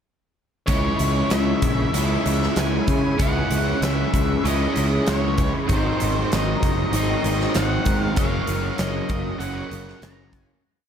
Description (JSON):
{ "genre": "rock, shoegaze and dream pop", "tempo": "96 BPM", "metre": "4/4", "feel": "straight", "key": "unclear", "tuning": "A4 = 440 Hz", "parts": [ { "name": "octave-fuzz lead guitar", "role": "melody", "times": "0.7-10.5 s", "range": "C5 to Bb5", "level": "-29 LUFS", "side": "left 1 dB", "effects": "distortion, ping-pong delay" }, { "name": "overdriven electric guitar", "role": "riff", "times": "0.7-10.6 s", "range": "Gb2 to Fb4", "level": "-24 LUFS", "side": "equal", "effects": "ensemble chorus" }, { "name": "fuzz picked electric bass", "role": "bass", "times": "0.7-10.5 s", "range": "Gb1 to Db3", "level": "-24 LUFS", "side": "equal", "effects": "overdrive" }, { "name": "huge arena drum kit", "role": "drums", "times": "0.7-10.5 s", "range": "hi-hat, kick drum, snare drum", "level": "-25 LUFS", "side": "equal", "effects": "none" } ], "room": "moderate huge ambient reverb, RT60 6.7 s", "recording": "dreamy mix soaked in reverb", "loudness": "-19 LUFS", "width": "side -8 dB against mid", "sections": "0.7-10.6 verse", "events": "fade-out 8.2-10.6", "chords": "0.7 Dbm; 5.7 Ab7; 8.2 Gb6" }